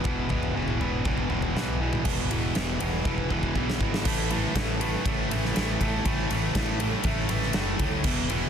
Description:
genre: quiet-loud alternative rock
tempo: 120 BPM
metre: 4/4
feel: straight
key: unclear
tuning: A4 = 440 Hz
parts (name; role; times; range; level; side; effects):
- overdriven electric guitar; riff; 0.0-8.5 s; E2 to A3; -28 LUFS; right 1 dB; none
- fuzz fingered electric bass; bass; 0.0-8.4 s; E1 to D2; -31 LUFS; equal; overdrive
- huge arena drum kit; drums; 0.0-8.4 s; crash cymbal, kick drum, ride cymbal, snare drum, toms; -28 LUFS; equal; none
room: light reverb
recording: dense, heavily limited modern master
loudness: -24 LUFS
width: side -8 dB against mid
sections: 0.0-2.1 A section; 2.1-4.1 B section; 4.1-8.5 C section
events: drum fill 3.1-4.1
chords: 0.0 E5; 2.1 E; 4.1 A5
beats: | 0.06 0.56 1.06 1.56 | 2.06 2.56 3.06 3.57 | 4.07 4.57 5.06 5.56 | 6.06 6.56 7.06 7.56 | 8.06

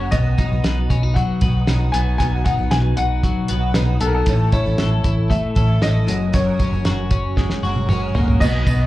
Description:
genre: jangly indie pop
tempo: 116 BPM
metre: 4/4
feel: straight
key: B major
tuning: A4 = 440 Hz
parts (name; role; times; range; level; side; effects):
- picked twelve-string acoustic guitar; accompaniment; 0.0-8.9 s; A2 to B4; -30 LUFS; right 5 dB; ensemble chorus, slapback echo
- twelve-string electric guitar; arpeggios; 0.0-8.9 s; F#2 to B4; -23 LUFS; left 3 dB; slapback echo
- vintage muted fingered electric bass; bass; 0.0-8.9 s; F#1 to B1; -19 LUFS; equal; none
- warm upright piano; melody; 0.1-8.9 s; A4 to G#5; -25 LUFS; left 2 dB; slapback echo
- cloth-damped thuddy drum kit; drums; 0.1-8.8 s; crash cymbal, hi-hat, kick drum, ride cymbal, snare drum, toms; -20 LUFS; equal; none
- tambourine; percussion; 8.4-8.8 s; none; -39 LUFS; right 3 dB; none
room: light reverb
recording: live gig heard through the venue's PA, club reverb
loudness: -16 LUFS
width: side -16 dB against mid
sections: 0.0-8.4 A section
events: drum fill 7.4-8.4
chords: 0.1 B; 4.3 A; 6.1 F#add9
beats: | 0.13 0.65 1.17 1.68 | 2.20 2.72 3.24 3.75 | 4.27 4.79 5.31 5.83 | 6.34 6.86 7.38 7.90 | 8.41

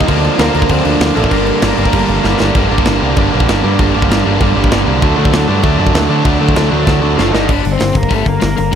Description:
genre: punk rock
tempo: 194 BPM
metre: 4/4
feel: straight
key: G minor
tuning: A4 = 440 Hz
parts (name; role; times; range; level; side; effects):
- biting overdriven guitar; riff; 0.0-8.8 s; G2 to D4; -17 LUFS; left 14 dB; none
- distorted electric guitar; riff; 0.0-7.5 s; G2 to D4; -16 LUFS; right 12 dB; overdrive
- growling picked electric bass; bass; 0.0-8.8 s; F#1 to D3; -16 LUFS; equal; overdrive
- tight metal drum kit; drums; 0.0-8.8 s; crash cymbal, hi-hat, kick drum, snare drum; -16 LUFS; equal; none
- raw garage guitar; melody; 0.4-2.4, 7.2-8.7 s; F3 to Eb5; -19 LUFS; left 1 dB; overdrive, tape echo
room: little or no reverb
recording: none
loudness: -10 LUFS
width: side -8 dB against mid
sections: 0.0-2.6 A section; 2.6-7.5 B section; 7.5-8.8 C section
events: drum fill 2.2-2.6, 6.9-7.5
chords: 0.1 Bb/D; 1.3 Gm; 5.0 D; 7.3 Gm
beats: | 0.08 0.39 0.70 1.00 | 1.31 1.62 1.93 2.24 | 2.55 2.86 3.17 3.48 | 3.79 4.09 4.40 4.71 | 5.02 5.33 5.64 5.95 | 6.25 6.56 6.87 7.18 | 7.49 7.80 8.11 8.42 | 8.73

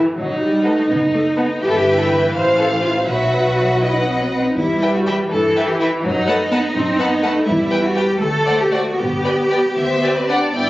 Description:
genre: quick classical-period movement for string orchestra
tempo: 75-84 BPM (dotted quarters)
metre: 6/8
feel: rubato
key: G major from 7.5 s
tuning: A4 = 440 Hz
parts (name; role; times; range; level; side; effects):
- warm studio violin section; melody; 0.0-10.7 s; D5 to A5; -26 LUFS; left 1 dB; none
- warm studio violin section; second line; 0.0-10.7 s; B4 to G5; -22 LUFS; left 1 dB; none
- dark studio viola section; accompaniment; 0.0-10.7 s; E3 to E4; -22 LUFS; equal; none
- rich studio double bass section; bass; 0.0-10.7 s; F#1 to G2; -25 LUFS; equal; none
- warm studio cello section; bass; 0.2-10.7 s; G2 to C5; -18 LUFS; equal; none
room: wet recital hall reverb, RT60 1.3 s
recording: recorded on a phone in the room, club reverb, nothing above 7.7 kHz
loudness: -15 LUFS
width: side -17 dB against mid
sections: 0.0-10.6 A section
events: none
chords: 0.2 B7/F#; 1.6 Em/G; 2.3 F/A; 3.1 Bsus4; 3.8 B; 4.6 Em; 5.3 Em/G; 6.0 B7/F#; 7.5 Em; 8.2 D7; 9.0 G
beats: | 0.18 0.89 | 1.62 2.34 | 3.08 3.83 | 4.58 5.31 | 6.04 6.75 | 7.47 8.21 | 8.98 9.76 | 10.55

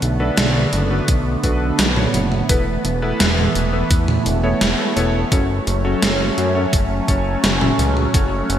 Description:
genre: synthwave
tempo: 85 BPM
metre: 4/4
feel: straight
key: F# minor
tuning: A4 = 440 Hz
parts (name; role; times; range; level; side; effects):
- phased analog pad; sustained chords; 0.0-8.6 s; D3 to C#4; -22 LUFS; right 1 dB; phaser, chorus, sidechain pumping, shimmer reverb
- fat analog bass; bass; 0.0-8.6 s; E1 to F#2; -20 LUFS; equal; tube saturation, sidechain pumping
- gated 80s digital drum machine; drums; 0.0-8.6 s; hi-hat, snare drum, toms; -20 LUFS; right 1 dB; gated reverb, gated reverb snare, overdrive
- warm electric grand piano; stabs; 0.2-8.3 s; B3 to E5; -24 LUFS; left 2 dB; lush chorus, digital delay, shimmer reverb
- electronic kick drum; drums; 1.1-8.3 s; none; -18 LUFS; equal; none
room: moderate lush hall reverb, RT60 2.7 s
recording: bright 1980s-style digital production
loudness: -15 LUFS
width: side -10 dB against mid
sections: 0.0-8.6 A section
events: none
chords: 0.0 Bm7; 2.5 Esus4; 5.3 F#m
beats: 0.38 1.08 1.79 | 2.49 3.20 3.91 4.61 | 5.32 6.02 6.73 7.43 | 8.14

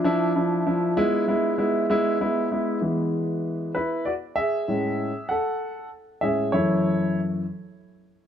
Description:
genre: six-eight pop ballad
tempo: 65 BPM (dotted quarters)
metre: 6/8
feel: straight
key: A major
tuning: A4 = 440 Hz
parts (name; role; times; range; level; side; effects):
- warm grand piano; accompaniment; 0.0-7.4 s; F#2 to F#5; -22 LUFS; equal; none
- glass harmonica; sustained chords; 0.0-2.8 s; B3 to E5; -30 LUFS; right 3 dB; none
room: light reverb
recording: dark, warm production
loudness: -22 LUFS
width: side -9 dB against mid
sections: 0.0-2.8 A section; 2.8-4.7 B section; 4.7-8.3 C section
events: grand piano solo 2.8-4.7, 4.7-8.3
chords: 0.0 Dmadd9; 1.0 E; 4.7 Amaj7; 6.5 F#m7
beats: 0.05 | 0.98 1.90 | 2.83 3.75 | 4.68 5.60 | 6.53

